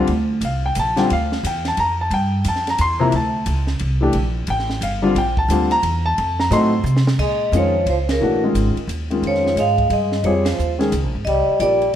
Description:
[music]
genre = modal jazz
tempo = 177 BPM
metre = 3/4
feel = swing 64% on 8ths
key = G dorian, Bb dorian from 7.2 s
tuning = A4 = 439 Hz
[part]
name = warm concert grand piano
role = accompaniment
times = 0.0-11.8 s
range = C3 to C6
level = -20 LUFS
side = left 2 dB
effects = none
[part]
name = upright bass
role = bass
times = 0.0-11.9 s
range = G1 to C3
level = -21 LUFS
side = right 1 dB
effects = none
[part]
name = compact cocktail drum kit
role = drums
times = 0.1-11.9 s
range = crash cymbal, hi-hat, kick drum, ride cymbal, snare drum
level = -28 LUFS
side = right 1 dB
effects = none
[part]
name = vibraphone with medium mallets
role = melody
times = 7.2-12.0 s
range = Bb4 to F5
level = -20 LUFS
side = left 1 dB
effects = none
[part]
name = trombone with cup mute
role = second line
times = 7.2-11.9 s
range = Db3 to Ab3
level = -24 LUFS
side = right 7 dB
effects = none
[sound]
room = light reverb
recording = none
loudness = -16 LUFS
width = side -10 dB against mid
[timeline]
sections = 0.0-7.2 A section; 7.2-12.0 B section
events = drum fill 6.9-7.2; band accent 8.0, 10.4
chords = 0.0 Gm9; 6.2 F7b9; 7.2 Bbm7; 11.3 Cm9

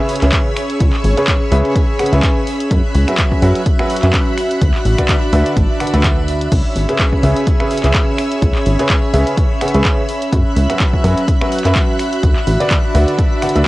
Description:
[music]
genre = piano house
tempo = 126 BPM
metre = 4/4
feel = swing 56% on 16ths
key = C# phrygian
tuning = A4 = 441 Hz
[part]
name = string machine, violins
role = sustained chords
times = 0.0-13.7 s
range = C#5 to F#6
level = -26 LUFS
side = equal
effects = ensemble chorus, sidechain pumping, cassette tape
[part]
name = clear baby grand piano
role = riff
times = 0.0-13.7 s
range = C#3 to F#5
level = -19 LUFS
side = equal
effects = sidechain pumping, cassette tape, analog delay
[part]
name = airy breathy pad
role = texture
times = 0.0-13.7 s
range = C#4 to B5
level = -20 LUFS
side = equal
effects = chorus, sidechain pumping, cassette tape
[part]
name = punchy analog drum machine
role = drums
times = 0.1-13.7 s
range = crash cymbal, finger snaps, handclaps, hi-hat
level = -21 LUFS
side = equal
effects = cassette tape
[part]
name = plucky analog bass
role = bass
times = 0.2-13.6 s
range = G#1 to F#2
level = -14 LUFS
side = equal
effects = sidechain pumping
[part]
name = electronic kick drum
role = drums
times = 0.3-13.3 s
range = none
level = -16 LUFS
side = equal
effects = cassette tape
[sound]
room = light reverb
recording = home recording on cassette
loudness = -12 LUFS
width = side -18 dB against mid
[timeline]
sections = 0.0-13.7 A section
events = none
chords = 0.0 C#m7; 2.7 F#7sus4; 4.6 D69; 6.5 C#m7; 10.3 F#7sus4; 12.2 D69

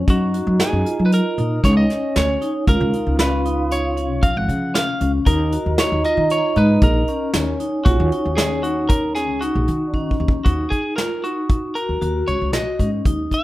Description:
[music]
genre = progressive instrumental, band music in an uneven meter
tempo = 116 BPM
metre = 5/4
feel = straight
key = Eb minor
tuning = A4 = 440 Hz
[part]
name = trombone with cup mute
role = second line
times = 0.0-10.5 s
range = Db4 to F4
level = -25 LUFS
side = right 2 dB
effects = none
[part]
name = vibraphone with hard mallets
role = arpeggios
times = 0.0-13.4 s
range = F3 to Gb4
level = -24 LUFS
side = left 1 dB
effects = none
[part]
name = upright bass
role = bass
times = 0.0-13.3 s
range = Ab1 to Gb3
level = -20 LUFS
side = equal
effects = none
[part]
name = lightly driven lead guitar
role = melody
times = 0.1-13.4 s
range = Gb4 to Gb5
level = -24 LUFS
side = equal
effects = none
[part]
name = soft brush drum kit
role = drums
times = 0.1-13.4 s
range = hi-hat, kick drum, snare drum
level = -19 LUFS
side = equal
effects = none
[sound]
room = moderate digital room reverb, RT60 1.3 s, studio reverb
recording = rough home demo mix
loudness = -17 LUFS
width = side -16 dB against mid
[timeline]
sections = 0.0-10.5 A section; 10.5-13.4 B section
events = drum fill 9.9-10.5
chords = 0.1 Gb; 2.7 Db7; 5.3 Ebm

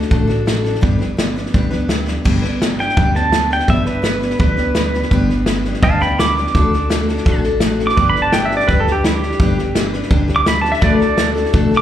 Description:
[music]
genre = honky-tonk and classic country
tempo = 168 BPM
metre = 4/4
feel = straight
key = G major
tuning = A4 = 440 Hz
[part]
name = picked steel-string acoustic guitar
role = accompaniment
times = 0.0-11.8 s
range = G2 to B4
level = -19 LUFS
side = left 2 dB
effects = slapback echo
[part]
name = upright bass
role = bass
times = 0.0-11.8 s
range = G1 to D2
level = -20 LUFS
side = right 1 dB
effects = none
[part]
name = natural country drum kit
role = drums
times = 0.0-11.8 s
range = crash cymbal, hi-hat, kick drum, snare drum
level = -18 LUFS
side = equal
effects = none
[part]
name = pedal steel guitar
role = melody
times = 2.8-11.8 s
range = E4 to D6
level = -18 LUFS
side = right 2 dB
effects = slapback echo
[part]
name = pedal steel guitar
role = sustained chords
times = 8.0-11.8 s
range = A4 to D5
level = -28 LUFS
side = right 2 dB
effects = lush chorus
[sound]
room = light reverb, small room ambience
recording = live gig heard through the venue's PA, club reverb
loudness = -13 LUFS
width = side -11 dB against mid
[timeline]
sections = 0.0-2.3 A section; 2.3-11.8 B section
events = drum fill 2.1; pedal steel guitar solo 2.3-11.8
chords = 0.0 D; 0.8 G; 6.5 D; 8.0 G; 10.8 D

